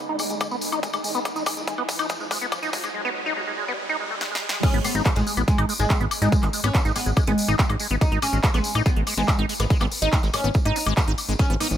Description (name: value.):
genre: psychedelic trance.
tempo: 142 BPM.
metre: 4/4.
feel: straight.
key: G# minor.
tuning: A4 = 441 Hz.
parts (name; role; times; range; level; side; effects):
riser; sound effects; 0.0-4.6 s; none; -34 LUFS; right 1 dB; none.
warbly tape-like pad; texture; 0.0-2.9 s; G#3 to G#5; -37 LUFS; right 1 dB; chorus, built-in reverb, sidechain pumping.
liquid acid bass; riff; 0.1-11.7 s; F#3 to D#4; -28 LUFS; moving between left 3 dB and right 3 dB; chorus, auto-pan, sidechain pumping, dub echo.
big-room dance drum kit; drums; 0.2-11.8 s; crash cymbal, handclaps, hi-hat, snare drum, woodblock; -29 LUFS; left 2 dB; overdrive.
tambourine; percussion; 0.2-11.8 s; none; -33 LUFS; left 2 dB; none.
electronic kick drum; drums; 0.4-11.5 s; none; -22 LUFS; equal; overdrive, high-pass filter on kick.
oud; melody; 4.6-11.8 s; G#3 to D#4; -27 LUFS; equal; phaser, sidechain pumping, digital delay.
fat analog bass; bass; 4.7-11.8 s; G#1 to A1; -24 LUFS; equal; none.
room: light reverb.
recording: high-pass filter.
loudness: -20 LUFS.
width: side -10 dB against mid.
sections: 0.0-4.6 A section; 4.6-11.8 B section.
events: build-up 0.0-4.6; drum fill 0.0-2.9, 4.2-4.6; riser 0.0-4.6; filter sweep on acid bass 0.0-4.6; drop 4.6-11.8.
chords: 0.0 G#5.